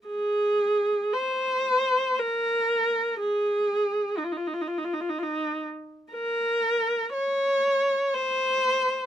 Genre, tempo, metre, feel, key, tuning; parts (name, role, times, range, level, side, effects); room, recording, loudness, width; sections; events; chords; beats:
classical, free, expressive piece for unaccompanied viola; 55-63 BPM; 3/4; rubato; Ab major; A4 = 439 Hz
warm viola; solo; 0.1-9.1 s; Eb4 to Db5; -23 LUFS; equal
little or no reverb; close, detailed microphones; -23 LUFS; side -10 dB against mid
0.1-9.1 A section
| 0.07 1.14 2.18 | 3.19 4.17 5.15 | 6.15 7.15 8.14